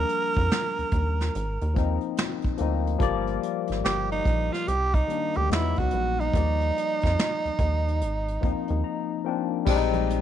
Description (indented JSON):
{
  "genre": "R&B, neo-soul",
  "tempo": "72 BPM",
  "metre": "4/4",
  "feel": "swing 64% on 16ths",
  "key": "Eb major",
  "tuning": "A4 = 437 Hz",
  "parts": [
    { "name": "raspy tenor saxophone", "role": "melody", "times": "0.0-9.3 s", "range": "D#4 to Bb4", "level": "-27 LUFS", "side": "right 4 dB", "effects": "none" },
    { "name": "barky tine electric piano", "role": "accompaniment", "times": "0.0-10.2 s", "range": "Eb3 to Bb5", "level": "-29 LUFS", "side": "left 13 dB", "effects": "overdrive, lush chorus" },
    { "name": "rubbery square bass", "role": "bass", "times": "0.0-10.2 s", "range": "G1 to F2", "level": "-27 LUFS", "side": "equal", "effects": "none" },
    { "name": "vintage brush drum kit", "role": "drums", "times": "0.1-10.2 s", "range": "crash cymbal, hi-hat, kick drum, snare drum", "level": "-28 LUFS", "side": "right 1 dB", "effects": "none" },
    { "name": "congas", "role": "percussion", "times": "9.7-10.1 s", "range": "none", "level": "-34 LUFS", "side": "right 12 dB", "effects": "none" }
  ],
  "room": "studio reverb",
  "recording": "1960s-style stereo with parts hard left and right",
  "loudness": "-23 LUFS",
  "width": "side -10 dB against mid",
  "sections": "0.0-9.7 A section",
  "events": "tine electric piano fill 8.4-9.7",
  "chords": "0.0 Ebmaj9; 1.3 Ab69; 3.0 Gm7; 4.7 Cm9; 5.5 Emaj9; 6.3 Ebmaj9; 8.0 Ab69; 9.7 Bb13sus4"
}